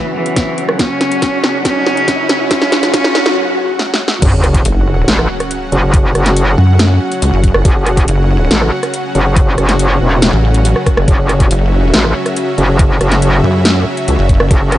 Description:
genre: heavy wobble dubstep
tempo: 140 BPM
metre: 4/4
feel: half-time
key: unclear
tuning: A4 = 440 Hz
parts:
  - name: bright cello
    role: melody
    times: 0.0-3.3 s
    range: E3 to C#4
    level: -16 LUFS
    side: equal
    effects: low-pass filter, digital delay
  - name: supersaw pad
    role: sustained chords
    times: 0.0-14.8 s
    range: C#3 to F#5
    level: -19 LUFS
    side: equal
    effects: sidechain pumping, low-pass filter
  - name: riser and sub drop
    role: sound effects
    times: 0.1-5.9 s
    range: none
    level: -19 LUFS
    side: equal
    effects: none
  - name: big-room dance drum kit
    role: drums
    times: 0.3-14.8 s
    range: crash cymbal, hi-hat, rim click, snare drum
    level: -16 LUFS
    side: equal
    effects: none
  - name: electronic kick drum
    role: drums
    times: 0.4-14.6 s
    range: none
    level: -12 LUFS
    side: equal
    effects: none
  - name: metallic wobble bass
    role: bass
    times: 4.2-14.8 s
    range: E1 to A1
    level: -12 LUFS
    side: equal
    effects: chorus, overdrive
  - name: pulsing pluck wobble bass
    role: bass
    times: 4.7-14.5 s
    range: F#1 to F#2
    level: -11 LUFS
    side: equal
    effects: chorus, overdrive
room: light reverb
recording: high-pass filter, nothing above 10.3 kHz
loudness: -10 LUFS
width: side -14 dB against mid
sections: 0.0-4.2 A section; 4.2-14.8 B section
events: build-up 0.0-4.2; drum fill 0.0-3.4, 3.8-4.2; filter sweep on supersaw synth 0.0-4.2; riser 0.1-3.4; break 3.4-4.2; drop 4.2-14.8; impact 4.2-5.9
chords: 0.0 F#5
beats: 0.36 | 0.79 1.22 1.65 2.08 | 2.51 2.94 3.37 3.79 | 4.22 4.65 5.08 5.51 | 5.94 6.37 6.79 7.22 | 7.65 8.08 8.51 8.94 | 9.37 9.79 10.22 10.65 | 11.08 11.51 11.94 12.37 | 12.79 13.22 13.65 14.08 | 14.51

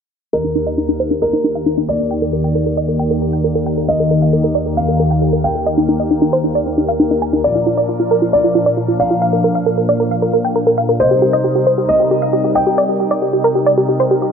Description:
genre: trance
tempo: 135 BPM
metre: 4/4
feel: straight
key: Eb major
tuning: A4 = 440 Hz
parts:
  - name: wide unison pluck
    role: melody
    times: 0.3-14.3 s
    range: Eb4 to Ab5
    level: -16 LUFS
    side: right 1 dB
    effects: digital delay
  - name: dark grand piano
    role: second line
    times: 0.3-14.3 s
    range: Bb4 to G5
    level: -20 LUFS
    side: left 1 dB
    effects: digital delay
  - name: filtered supersaw swell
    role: sustained chords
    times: 0.3-14.3 s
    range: Eb2 to F5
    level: -17 LUFS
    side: left 1 dB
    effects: phaser
room: moderate lush hall reverb, RT60 2.6 s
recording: low-pass filter, nothing above 7.7 kHz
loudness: -13 LUFS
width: side -6 dB against mid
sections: 0.3-14.3 A section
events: filter sweep on synth pluck 0.3-14.3; filter sweep 0.3-14.3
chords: 0.3 Eb; 7.4 Bb; 11.0 Cm7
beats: | 0.33 0.78 1.22 1.67 | 2.11 2.55 3.00 3.44 | 3.89 4.33 4.78 5.22 | 5.67 6.11 6.55 7.00 | 7.44 7.89 8.33 8.78 | 9.22 9.66 10.11 10.55 | 11.00 11.44 11.89 12.33 | 12.78 13.22 13.66 14.11

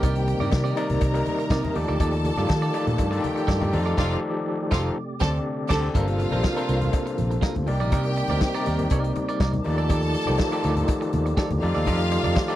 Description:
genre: disco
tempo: 122 BPM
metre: 4/4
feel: straight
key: G minor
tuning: A4 = 440 Hz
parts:
  - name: clear studio string section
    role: second line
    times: 0.0-12.6 s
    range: F4 to Bb5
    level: -31 LUFS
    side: right 2 dB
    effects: none
  - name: clean electric guitar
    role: accompaniment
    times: 0.0-12.6 s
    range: C4 to D5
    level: -32 LUFS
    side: right 7 dB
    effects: none
  - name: overdriven tine electric piano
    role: accompaniment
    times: 0.0-12.6 s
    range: C3 to F5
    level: -27 LUFS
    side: left 3 dB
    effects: fast tremolo
  - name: percussive tonewheel organ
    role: sustained chords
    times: 0.0-12.6 s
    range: C3 to D5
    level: -32 LUFS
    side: right 2 dB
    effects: chorus vibrato, fast rotary speaker
  - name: fingered electric bass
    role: bass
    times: 0.0-12.3 s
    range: F1 to Eb3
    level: -25 LUFS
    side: equal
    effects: none
  - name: vintage drum kit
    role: drums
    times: 0.0-12.6 s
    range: crash cymbal, hi-hat, kick drum, snare drum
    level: -24 LUFS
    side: equal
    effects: none
  - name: congas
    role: percussion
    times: 0.0-12.5 s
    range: none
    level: -34 LUFS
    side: left 3 dB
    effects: none
  - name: cowbell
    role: percussion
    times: 0.0-12.5 s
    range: none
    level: -36 LUFS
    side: left 19 dB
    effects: none
room: little or no reverb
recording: dry, close 1970s-style studio recording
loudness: -21 LUFS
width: side -14 dB against mid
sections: 0.0-5.9 A section; 5.9-12.6 B section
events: band accent 4.0-5.9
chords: 0.0 Cm9; 1.8 Ebmaj9#11; 3.7 F13; 5.0 D7sus4; 5.9 Gm11; 7.7 Cm9; 9.7 Ebmaj9#11; 11.6 F13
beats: | 0.03 0.52 1.01 1.51 | 2.00 2.49 2.99 3.48 | 3.98 4.47 4.96 5.46 | 5.95 6.44 6.94 7.43 | 7.92 8.42 8.91 9.40 | 9.90 10.39 10.88 11.38 | 11.87 12.36

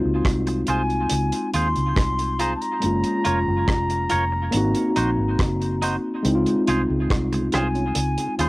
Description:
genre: lovers rock reggae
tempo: 70 BPM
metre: 4/4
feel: straight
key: Db major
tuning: A4 = 440 Hz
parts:
  - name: tine electric piano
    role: accompaniment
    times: 0.0-8.5 s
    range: Ab3 to Gb4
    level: -24 LUFS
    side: left 1 dB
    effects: overdrive, cassette tape, tape echo
  - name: vintage muted fingered electric bass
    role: bass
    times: 0.1-8.5 s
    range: F1 to Eb2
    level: -25 LUFS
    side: equal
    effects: none
  - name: damped 70s drum kit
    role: drums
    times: 0.2-8.5 s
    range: hi-hat, kick drum, rim click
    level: -25 LUFS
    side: equal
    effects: cassette tape
  - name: twangy electric guitar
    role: stabs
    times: 0.5-8.5 s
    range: Eb4 to Db5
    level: -29 LUFS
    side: right 2 dB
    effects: cassette tape, tape echo
  - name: concert flute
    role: melody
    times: 0.7-8.5 s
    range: Ab5 to C6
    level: -26 LUFS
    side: left 1 dB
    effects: cassette tape, tape echo
  - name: mellow tonewheel organ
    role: accompaniment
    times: 6.5-8.5 s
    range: Db3 to F4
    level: -31 LUFS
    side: right 2 dB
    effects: slow rotary speaker, cassette tape
room: moderate booth ambience, RT60 0.2 s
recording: home recording on cassette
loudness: -19 LUFS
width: side -21 dB against mid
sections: 0.0-8.5 A section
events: none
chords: 0.0 Dbmaj7; 2.8 Gbmaj7; 4.5 Ab7; 6.2 Dbmaj7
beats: 0.25 1.11 1.96 | 2.82 3.68 4.53 5.39 | 6.25 7.11 7.96

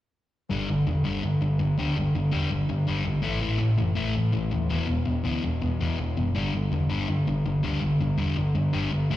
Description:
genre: punk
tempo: 164 BPM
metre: 4/4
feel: straight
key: unclear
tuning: A4 = 438 Hz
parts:
  - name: sludgy distorted guitar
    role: riff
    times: 0.5-9.2 s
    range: E2 to A3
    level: -25 LUFS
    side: left 1 dB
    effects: overdrive
  - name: overdriven picked electric bass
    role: bass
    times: 0.5-9.2 s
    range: E1 to A2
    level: -28 LUFS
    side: right 1 dB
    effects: none
room: light reverb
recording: live gig heard through the venue's PA, club ambience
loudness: -23 LUFS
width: side -14 dB against mid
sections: 0.5-9.2 A section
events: none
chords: 0.5 G5; 3.2 A5; 4.7 E5; 6.4 G5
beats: | 0.52 0.88 1.25 1.61 | 1.97 2.34 2.70 3.07 | 3.43 3.80 4.16 4.53 | 4.89 5.26 5.62 5.99 | 6.36 6.72 7.09 7.46 | 7.82 8.19 8.56 8.92

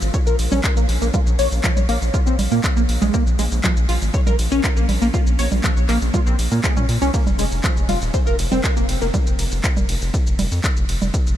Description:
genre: melodic techno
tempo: 120 BPM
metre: 4/4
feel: straight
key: Bb minor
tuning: A4 = 439 Hz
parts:
  - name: round analog bass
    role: bass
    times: 0.0-11.4 s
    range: Eb1 to Bb2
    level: -22 LUFS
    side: equal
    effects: sidechain pumping
  - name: punchy analog drum machine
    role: drums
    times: 0.0-11.4 s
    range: congas, handclaps, hi-hat, ride cymbal, shaker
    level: -25 LUFS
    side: right 2 dB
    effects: none
  - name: tight sequenced synth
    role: arpeggios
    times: 0.1-9.1 s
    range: F3 to Db5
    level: -23 LUFS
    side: equal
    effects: chorus, phaser, sidechain pumping, diffuse ambient delay
  - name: electronic kick drum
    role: drums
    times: 0.1-11.2 s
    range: none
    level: -20 LUFS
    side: equal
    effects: none
room: light reverb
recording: none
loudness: -16 LUFS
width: side -11 dB against mid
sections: 0.0-11.4 A section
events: none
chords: none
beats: 0.14 0.64 | 1.14 1.64 2.14 2.64 | 3.14 3.64 4.14 4.64 | 5.14 5.64 6.14 6.64 | 7.14 7.64 8.14 8.64 | 9.14 9.64 10.14 10.64 | 11.14

